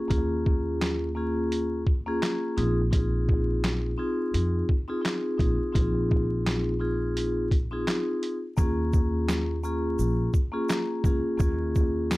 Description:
hip hop, boom-bap hip-hop; 85 BPM; 4/4; swing 55% on 16ths; A4 = 438 Hz
vibraphone with soft mallets; accompaniment; 0.0-12.2 s; Bb3 to Ab4; -28 LUFS; left 1 dB; high-pass filter, low-pass filter
upright bass; bass; 0.1-12.2 s; Bb1 to F2; -29 LUFS; equal
boom bap sampler-style drum kit; drums; 0.1-12.2 s; handclaps, hi-hat, kick drum, snare drum; -25 LUFS; equal
egg shaker; percussion; 8.6-12.2 s; -47 LUFS; right 10 dB
light reverb; dark, warm production, vinyl crackle; -24 LUFS; side -20 dB against mid
0.0-8.6 A section; 8.6-12.2 A section
hi-hats muted 8.6-12.2
0.0 Eb9sus4; 2.6 Bb9sus4; 8.6 Eb9sus4
| 0.10 0.81 1.52 2.22 | 2.93 3.63 4.34 5.04 | 5.75 6.46 7.16 7.87 | 8.57 9.28 9.99 10.69 | 11.40 12.10

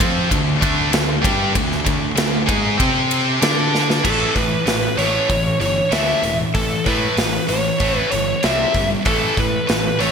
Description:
hard rock; 96 BPM; 4/4; straight; A4 = 439 Hz
heavy high-gain guitar; riff; 0.0-10.1 s; A2 to D5; -20 LUFS; equal; distortion
fuzz picked electric bass; bass; 0.0-10.1 s; E1 to D3; -23 LUFS; equal; overdrive
big rock drum kit; drums; 0.0-10.1 s; crash cymbal, hi-hat, kick drum, ride cymbal, snare drum; -21 LUFS; equal; gated reverb
biting lead guitar; melody; 4.0-10.1 s; A4 to E5; -20 LUFS; equal; overdrive, ping-pong delay
moderate lush hall reverb, RT60 1.7 s, small room ambience; bright 1980s-style digital production; -15 LUFS; side -6 dB against mid
0.0-4.0 A section; 4.0-10.1 B section
drum fill 3.7-4.0
0.0 D5; 2.8 C5; 3.4 D5; 4.0 A; 8.4 C5; 9.1 A5
0.31 0.93 | 1.55 2.17 2.80 3.42 | 4.05 4.67 5.30 5.92 | 6.55 7.18 7.81 8.43 | 9.06 9.69

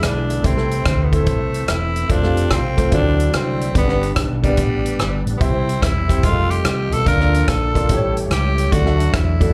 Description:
uptempo gospel; 145 BPM; 4/4; swing 65% on 8ths; A4 = 441 Hz
raspy tenor saxophone; melody; 0.0-9.5 s; G3 to Bb4; -26 LUFS; equal; slapback echo
clear upright piano; accompaniment; 0.0-9.5 s; G2 to E5; -26 LUFS; equal; slapback echo
bright tonewheel organ; sustained chords; 0.0-9.5 s; D3 to G4; -32 LUFS; equal
mellow French horn section; sustained chords; 0.0-9.5 s; Bb3 to F5; -35 LUFS; equal
fingered electric bass; bass; 0.0-9.5 s; E1 to E2; -22 LUFS; equal
natural country drum kit; drums; 0.0-9.5 s; hi-hat, kick drum, rim click; -22 LUFS; equal
light reverb; live gig heard through the venue's PA, club reverb; -18 LUFS; mono
0.0-9.5 A section
0.4 Am/C; 2.1 F; 2.9 D9; 3.8 G; 5.4 C; 6.2 F9; 7.1 Bb/D; 7.9 A7; 8.7 D
0.03 | 0.45 0.86 1.27 1.69 | 2.10 2.51 2.92 3.34 | 3.75 4.16 4.58 4.99 | 5.41 5.82 6.23 6.65 | 7.06 7.48 7.89 8.31 | 8.72 9.14

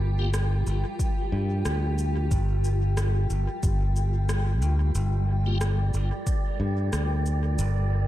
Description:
ambient dub; 91 BPM; 4/4; swing 56% on 16ths; G minor; A4 = 440 Hz
granular cloud pad; sustained chords; 0.0-8.1 s; G3 to G5; -33 LUFS; left 1 dB; built-in reverb
modern bright fingered electric bass; bass; 0.0-8.1 s; G1 to G2; -24 LUFS; equal
tonewheel organ; stabs; 0.2-0.3, 5.5-5.6 s; Bb3 to G4; -40 LUFS; left 2 dB; overdrive, chorus vibrato, fast rotary speaker, dub echo
electronic rim click and cabasa; drums; 0.3-7.7 s; -36 LUFS; equal; dub echo
electronic kick drum; drums; 1.0-6.4 s; -27 LUFS; equal
wind-like tuned noise texture; texture; 5.2-8.1 s; D5; -39 LUFS; right 13 dB; built-in reverb
little or no reverb; -23 LUFS; side -14 dB against mid
0.0-5.0 A section; 5.0-8.1 A section
band accent 4.3-4.6
0.0 Gm7
0.34 0.99 1.65 | 2.31 2.97 3.63 4.29 | 4.95 5.61 6.27 6.93 | 7.59

